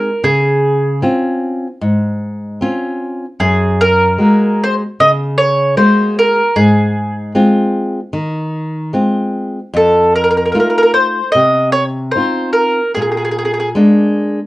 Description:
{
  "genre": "italian folk, Italian serenade",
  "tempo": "76 BPM",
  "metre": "4/4",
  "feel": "straight",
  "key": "Ab major",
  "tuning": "A4 = 441 Hz",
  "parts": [
    { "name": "mandolin", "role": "melody", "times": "0.0-13.7 s", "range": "Ab4 to Eb5", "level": "-12 LUFS", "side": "equal", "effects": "none" },
    { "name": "nylon-string guitar", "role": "accompaniment", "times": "0.0-14.4 s", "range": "F2 to Gb4", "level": "-14 LUFS", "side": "equal", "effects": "none" }
  ],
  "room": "moderate studio reverb, RT60 0.6 s",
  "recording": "worn, warbling old tape, cassette tape, warbly pitch drift",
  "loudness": "-11 LUFS",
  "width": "side -18 dB against mid",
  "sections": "0.0-14.5 A section",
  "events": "none",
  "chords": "0.3 Dbmaj7; 3.4 Gbadd9; 6.6 Ab6; 9.8 F7; 13.0 Bb7"
}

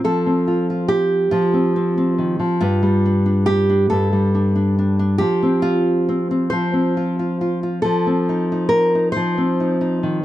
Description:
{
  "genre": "folk, solo fingerstyle acoustic guitar",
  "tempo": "46 BPM (dotted quarters)",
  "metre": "6/8",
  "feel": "straight",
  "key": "unclear",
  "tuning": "A4 = 440 Hz",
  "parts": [
    { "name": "nylon-string guitar", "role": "solo", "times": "0.0-10.2 s", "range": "G2 to C5", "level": "-16 LUFS", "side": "equal", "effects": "none" }
  ],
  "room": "light reverb",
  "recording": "dark, warm production",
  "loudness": "-16 LUFS",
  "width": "side -14 dB against mid",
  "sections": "0.0-10.2 A section",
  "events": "none",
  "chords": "0.0 F; 2.6 Gsus2; 5.2 Fsus2; 7.8 F7"
}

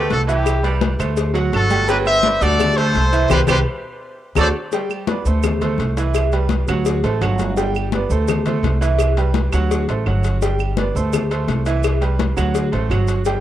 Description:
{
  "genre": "latin, salsa",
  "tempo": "169 BPM",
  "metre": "4/4",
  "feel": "straight",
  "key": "unclear",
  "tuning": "A4 = 438 Hz",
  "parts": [
    { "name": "brilliant horn section", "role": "melody", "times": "0.0-4.5 s", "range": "E4 to E5", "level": "-19 LUFS", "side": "left 1 dB", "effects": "cassette tape" },
    { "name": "raspy baritone saxophone", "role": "second line", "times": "0.0-4.5 s", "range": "D3 to A3", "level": "-30 LUFS", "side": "right 6 dB", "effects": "none" },
    { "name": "bright concert grand piano", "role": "accompaniment", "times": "0.0-13.4 s", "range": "E3 to G5", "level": "-22 LUFS", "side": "right 6 dB", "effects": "none" },
    { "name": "upright bass", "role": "bass", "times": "0.0-13.4 s", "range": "G1 to D2", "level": "-19 LUFS", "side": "equal", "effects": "none" },
    { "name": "congas", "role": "percussion", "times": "0.1-13.4 s", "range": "none", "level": "-25 LUFS", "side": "left 7 dB", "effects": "none" },
    { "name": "cowbell", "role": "percussion", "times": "0.1-13.4 s", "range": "none", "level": "-25 LUFS", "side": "left 8 dB", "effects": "none" },
    { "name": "maracas", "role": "percussion", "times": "0.1-13.4 s", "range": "none", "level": "-38 LUFS", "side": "right 8 dB", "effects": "none" },
    { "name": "claves", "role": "percussion", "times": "0.5-13.1 s", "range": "none", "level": "-30 LUFS", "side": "right 9 dB", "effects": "none" }
  ],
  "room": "light reverb, small room ambience",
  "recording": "home recording on cassette",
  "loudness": "-16 LUFS",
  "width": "side -12 dB against mid",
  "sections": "0.0-4.7 A section; 4.7-13.4 B section",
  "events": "band accent 3.3-4.7; drum fill 3.7-4.7",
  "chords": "0.5 Cmaj7; 1.2 D7; 1.9 Gmaj7; 2.6 D7; 3.3 C5; 4.0 D; 4.7 G; 5.4 D5; 6.1 Cmaj7; 6.9 D7; 7.6 G; 8.3 D5; 9.0 Cmaj7; 9.7 D7; 10.4 G; 11.1 D5; 11.8 Cmaj7; 12.6 D7"
}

